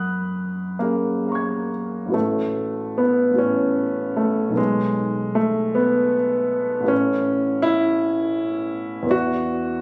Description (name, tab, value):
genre	classical, impressionist solo piano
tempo	44-56 BPM (dotted quarters)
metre	6/8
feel	rubato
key	A major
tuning	A4 = 440 Hz
part	warm grand piano	solo	0.0-9.8 s	A1 to G#6	-22 LUFS	equal	none
room	moderate recital hall reverb, RT60 1.6 s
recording	recorded on a phone in the room, club reverb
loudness	-22 LUFS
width	mono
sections	0.0-2.1 A section; 2.1-9.8 B section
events	none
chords	0.0 F#maj9; 2.1 A69; 4.6 B9; 6.9 Aadd9; 9.1 E7sus2